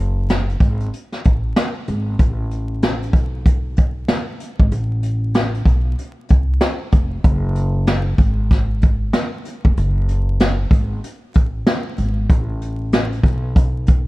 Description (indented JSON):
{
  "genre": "hip hop, jazz-hop",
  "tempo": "95 BPM",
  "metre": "4/4",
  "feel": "swing 61% on 16ths",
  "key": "F# minor",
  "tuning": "A4 = 443 Hz",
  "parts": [
    { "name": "upright bass", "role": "bass", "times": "0.0-14.1 s", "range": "E#1 to C2", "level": "-20 LUFS", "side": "equal", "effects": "none" },
    { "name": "vintage brush drum kit", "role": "drums", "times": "0.3-14.1 s", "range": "hi-hat, kick drum, snare drum", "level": "-16 LUFS", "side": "equal", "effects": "none" }
  ],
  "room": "little or no reverb",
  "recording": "dark, warm production, vinyl crackle",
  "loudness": "-16 LUFS",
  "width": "side -19 dB against mid",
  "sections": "0.0-14.1 A section",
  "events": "none",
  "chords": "none"
}